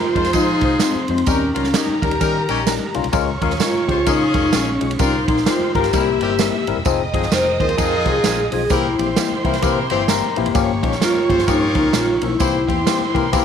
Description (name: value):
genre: uptempo 1960s-style soul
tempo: 129 BPM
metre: 4/4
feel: swing 61% on 8ths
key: F minor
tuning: A4 = 440 Hz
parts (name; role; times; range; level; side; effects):
- vibraphone with soft mallets; melody; 0.0-13.4 s; C4 to C5; -20 LUFS; equal; none
- warm horn section; second line; 0.0-13.4 s; Bb3 to C5; -25 LUFS; left 2 dB; none
- warm studio violin section; second line; 0.0-13.4 s; Bb4 to E6; -26 LUFS; right 2 dB; none
- tine electric piano; accompaniment; 0.0-13.4 s; E3 to C5; -23 LUFS; left 12 dB; overdrive, auto-pan
- vintage muted fingered electric bass; bass; 0.0-13.4 s; E1 to F3; -26 LUFS; equal; none
- swinging big-band drum kit; drums; 0.2-13.4 s; hi-hat, kick drum, ride cymbal, snare drum; -22 LUFS; right 4 dB; none
- tambourine; percussion; 0.3-13.4 s; none; -30 LUFS; right 15 dB; none
- mellow electric guitar; riff; 5.5-6.6, 9.9-10.8 s; Bb3 to C5; -24 LUFS; left 12 dB; none
room: light reverb, studio ambience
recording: 1960s-style stereo with parts hard left and right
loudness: -15 LUFS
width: side -8 dB against mid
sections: 0.0-13.4 A section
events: none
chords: 0.0 Fm7; 1.3 Eb7; 3.1 Bbm7/Db; 5.0 C7sus4; 5.9 C7; 6.9 Fm7; 8.7 C7; 10.6 Gm7b5; 12.4 C7